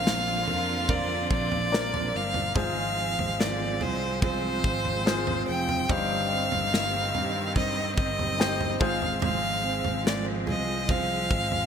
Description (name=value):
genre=pop ballad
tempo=72 BPM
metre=4/4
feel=straight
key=unclear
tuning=A4 = 440 Hz
part: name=clear violin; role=melody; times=0.0-11.7 s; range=C5 to G5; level=-28 LUFS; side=left 1 dB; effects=none
part: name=clear concert grand piano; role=accompaniment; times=0.0-11.7 s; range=G2 to D5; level=-35 LUFS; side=left 4 dB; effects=none
part: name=clear studio string section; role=sustained chords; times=0.0-11.7 s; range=D3 to F4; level=-34 LUFS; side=right 1 dB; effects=none
part: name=fingerpicked steel-string acoustic guitar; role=arpeggios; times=0.0-11.7 s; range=G2 to Bb4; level=-35 LUFS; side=right 5 dB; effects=none
part: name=sustaining fretless electric bass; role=bass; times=0.0-11.7 s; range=F1 to G2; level=-33 LUFS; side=equal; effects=wide subtle chorus
part: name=modern studio drum kit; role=drums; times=0.1-11.7 s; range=kick drum, snare drum, toms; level=-30 LUFS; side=equal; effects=gated reverb
room=light reverb, small room ambience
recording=bright 1980s-style digital production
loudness=-24 LUFS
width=side -7 dB against mid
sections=0.0-11.7 A section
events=none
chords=0.0 Bbadd9; 2.6 Fm/Ab; 5.9 Cm/G; 8.8 Fm/Ab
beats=0.06 0.89 1.72 | 2.56 3.39 4.22 5.06 | 5.89 6.72 7.56 8.39 | 9.22 10.06 10.89